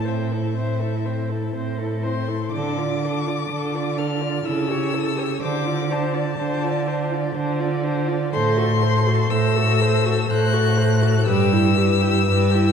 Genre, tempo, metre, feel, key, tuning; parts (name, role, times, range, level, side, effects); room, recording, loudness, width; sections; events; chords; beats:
classical, slow romantic movement for string quartet; 61 BPM; 3/4; rubato; A4 = 440 Hz
warm violin; melody; 0.0-12.7 s; E5 to F#6; -27 LUFS; left 6 dB
dark violin; second line; 0.0-12.7 s; G4 to D5; -27 LUFS; left 3 dB
warm viola; accompaniment; 0.0-12.7 s; C4 to A4; -26 LUFS; right 2 dB
rich cello; bass; 0.0-12.7 s; G2 to D3; -21 LUFS; right 1 dB
wet concert hall reverb, RT60 2.0 s; heard from further back in the room; -19 LUFS; side -7 dB against mid
0.0-12.7 A section
0.0 Am; 2.5 Dm; 4.4 A7/C#; 5.4 Dm7; 8.3 F#dim/A; 11.3 Em/G
0.56 1.54 | 2.53 3.50 4.45 | 5.41 6.37 7.35 | 8.32 9.30 10.29 | 11.27 12.27